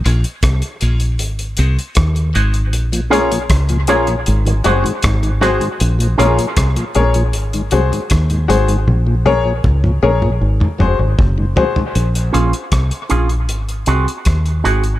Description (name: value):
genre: dub reggae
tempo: 78 BPM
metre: 4/4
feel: straight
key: Bb minor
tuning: A4 = 440 Hz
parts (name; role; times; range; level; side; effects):
- electric guitar with an envelope filter; accompaniment; 0.0-6.4, 12.3-14.8 s; C4 to Ab4; -21 LUFS; right 4 dB; high-pass filter, dub echo
- mellow tonewheel organ; accompaniment; 0.0-11.8 s; Ab2 to Db4; -21 LUFS; left 2 dB; slow rotary speaker, high-pass filter
- clear baby grand piano; stabs; 0.0-11.8 s; Gb4 to Db5; -20 LUFS; left 5 dB; high-pass filter, dub echo
- fingered electric bass; bass; 0.0-15.0 s; Gb1 to Eb2; -15 LUFS; equal; none
- cloth-damped thuddy drum kit; drums; 0.1-15.0 s; hi-hat, kick drum, rim click, toms; -19 LUFS; equal; none
room: light reverb, studio ambience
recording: none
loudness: -13 LUFS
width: side -15 dB against mid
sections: 0.0-11.9 A section; 11.9-15.0 B section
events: filter sweep 0.0-2.7; drum fill 8.9-11.9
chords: 0.0 Bbm7; 1.2 Ab7; 2.7 Bbm7; 4.3 Ab7; 5.8 Bbm7; 7.3 Ab7; 8.9 Bbm7; 10.4 Ab7; 11.9 Bbm7; 13.5 Ab7